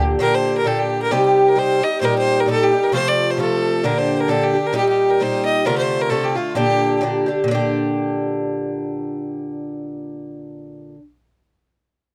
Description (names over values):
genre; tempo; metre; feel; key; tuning
celtic folk, Celtic polka; 132 BPM; 2/4; swing 55% on 8ths; G minor; A4 = 442 Hz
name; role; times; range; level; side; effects
Irish bouzouki; accompaniment; 0.0-11.0 s; Bb2 to G4; -21 LUFS; equal; none
clear fiddle; melody; 0.2-7.0 s; F4 to Eb5; -22 LUFS; equal; none
room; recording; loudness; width
little or no reverb; dry, close 1970s-style studio recording; -19 LUFS; mono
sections
0.2-7.5 A section; 7.5-9.3 B section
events
none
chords
0.2 Gm; 1.1 Cm; 2.0 Eb; 2.9 F; 3.8 Gm; 4.8 Eb; 5.7 F6; 6.6 Gm